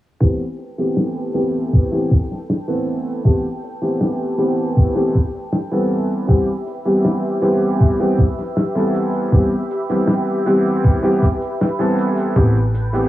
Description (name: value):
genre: vaporwave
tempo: 79 BPM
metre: 4/4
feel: straight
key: unclear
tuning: A4 = 440 Hz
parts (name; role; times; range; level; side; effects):
- warm electric grand piano; accompaniment; 0.2-13.1 s; E3 to A4; -18 LUFS; equal; analog chorus, cassette tape, tape echo, plate reverb
- lush unison pad; sustained chords; 0.6-13.1 s; G4 to G5; -27 LUFS; equal; chorus, phaser, cassette tape, plate reverb
- electronic kick drum; drums; 0.2-12.5 s; none; -15 LUFS; equal; overdrive, vintage 12-bit sampler grit, cassette tape
- warm soul drum kit; drums; 0.2-13.1 s; hi-hat, snare drum; -20 LUFS; left 1 dB; vintage 12-bit sampler grit, cassette tape
- slap-like FM bass; bass; 12.4-13.1 s; A1; -17 LUFS; equal; none
room: moderate booth ambience, RT60 0.2 s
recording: home recording on cassette, low-pass filter, small room ambience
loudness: -16 LUFS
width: side -15 dB against mid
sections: 0.2-13.1 A section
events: filter sweep 0.2-13.1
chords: 0.2 Am9